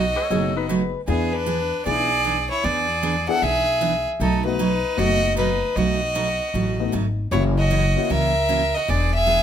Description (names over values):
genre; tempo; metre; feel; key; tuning
country; 154 BPM; 4/4; swing 66% on 8ths; B mixolydian; A4 = 443 Hz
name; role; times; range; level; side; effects
rich fiddle; melody; 0.0-9.4 s; G#4 to F#5; -22 LUFS; equal; none
clear fiddle; second line; 0.0-9.4 s; B3 to A#4; -28 LUFS; right 5 dB; none
picked steel-string acoustic guitar; accompaniment; 0.0-9.4 s; B2 to G#4; -26 LUFS; right 5 dB; none
upright bass; bass; 0.0-9.4 s; E1 to E2; -24 LUFS; left 1 dB; none
clean lap steel guitar; second line; 0.2-1.0 s; D#4 to C#5; -28 LUFS; left 8 dB; none
warm upright piano; accompaniment; 0.3-8.1 s; A3 to G#4; -27 LUFS; left 9 dB; none
room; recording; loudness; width
moderate studio reverb, RT60 0.8 s; none; -19 LUFS; side -9 dB against mid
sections
0.0-9.4 A section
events
none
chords
0.0 B7; 1.1 E7; 4.2 B7; 7.3 F#7; 8.9 E7